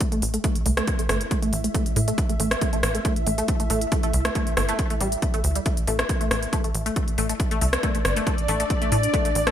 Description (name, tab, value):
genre	driving peak-time techno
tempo	138 BPM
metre	4/4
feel	straight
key	A minor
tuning	A4 = 441 Hz
part	tight sequenced synth	riff	0.0-9.5 s	G3 to A3	-28 LUFS	left 1 dB	chorus, overdrive, sidechain pumping, ping-pong delay
part	electronic kick drum	drums	0.0-9.2 s	none	-25 LUFS	equal	overdrive, studio reverb
part	techno drum kit	drums	0.0-9.5 s	hi-hat, rim click	-27 LUFS	equal	overdrive, sidechain pumping on hats, studio reverb, sidechain pumping on cymbals, gated reverb
part	granular cloud pad	texture	1.0-9.5 s	D5 to E5	-30 LUFS	equal	built-in reverb, wide subtle chorus, sidechain pumping
part	tight sequencer bass	bass	0.2-9.5 s	G1 to A2	-25 LUFS	equal	sidechain pumping
room	light reverb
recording	bright 1980s-style digital production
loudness	-21 LUFS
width	side -10 dB against mid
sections	0.0-9.5 A section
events	none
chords	0.0 A5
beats	0.01 | 0.44 0.88 1.31 1.75 | 2.18 2.62 3.05 3.48 | 3.92 4.35 4.79 5.22 | 5.66 6.09 6.53 6.96 | 7.40 7.83 8.27 8.70 | 9.14